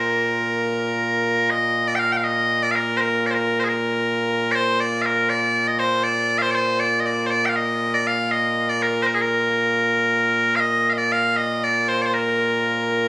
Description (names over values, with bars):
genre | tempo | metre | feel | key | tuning
scottish traditional | 79 BPM (dotted quarters) | 6/8 | straight | Bb major | A4 = 439 Hz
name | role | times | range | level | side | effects
loud bright bagpipes | solo | 0.0-13.1 s | Bb2 to G5 | -18 LUFS | equal | none
room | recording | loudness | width
moderate huge ambient reverb, RT60 3.9 s | recorded on a phone in the room, club reverb, compression | -18 LUFS | side -21 dB against mid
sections
0.0-1.5 A section; 1.5-13.1 A section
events
none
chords
none